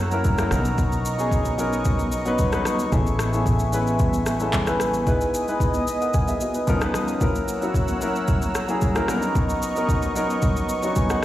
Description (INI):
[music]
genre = amapiano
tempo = 112 BPM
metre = 4/4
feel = straight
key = B major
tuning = A4 = 440 Hz
[part]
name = dark grand piano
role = accompaniment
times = 0.0-11.2 s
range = E#3 to G#5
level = -25 LUFS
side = left 2 dB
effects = none
[part]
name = warm analog pad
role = sustained chords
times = 0.0-11.2 s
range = B3 to E6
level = -27 LUFS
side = right 2 dB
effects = chorus
[part]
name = upright bass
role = bass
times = 0.0-5.0 s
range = A1 to F#2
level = -25 LUFS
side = equal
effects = none
[part]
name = smooth R&B drum kit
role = drums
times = 0.1-11.2 s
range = handclaps, kick drum, rim click, shaker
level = -24 LUFS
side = equal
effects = none
[part]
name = congas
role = percussion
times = 0.2-11.2 s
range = none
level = -32 LUFS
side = right 3 dB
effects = none
[sound]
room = light reverb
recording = played on a big sound system in a bare room, large studio reverb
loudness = -20 LUFS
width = side -14 dB against mid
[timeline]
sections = 0.0-11.2 A section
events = none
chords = 0.0 F#7; 0.5 Bmaj9; 2.9 Amaj9; 5.1 Emaj7; 6.7 C#13; 7.2 F#7; 9.1 Bmaj9